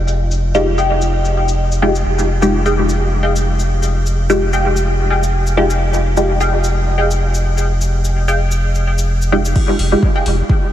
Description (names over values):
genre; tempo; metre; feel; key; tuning
dub techno; 128 BPM; 4/4; swing 55% on 16ths; F minor; A4 = 436 Hz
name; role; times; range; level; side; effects
filtered dub chord stab; stabs; 0.0-10.7 s; Ab3 to G4; -18 LUFS; equal; phaser, sidechain pumping, dub echo
warm sub bass; bass; 0.0-10.4 s; F1; -16 LUFS; equal; sidechain pumping
soft vintage rhythm box; drums; 0.1-10.4 s; crash cymbal, hi-hat, shaker; -29 LUFS; left 3 dB; low-pass filter on perc, low-pass filter on cymbals, low-pass filter on hats, low-pass filter on room
filtered dub chord stab; riff; 0.8-10.3 s; Ab4 to G5; -21 LUFS; left 1 dB; phaser, lush chorus, sidechain pumping, dub echo
electronic kick drum; drums; 9.6-10.6 s; none; -14 LUFS; equal; overdrive
room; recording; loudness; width
moderate huge ambient reverb, RT60 7.6 s; dreamy mix soaked in reverb, vinyl crackle; -13 LUFS; side -11 dB against mid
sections
0.0-9.6 A section; 9.6-10.7 B section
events
none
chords
0.0 Fm9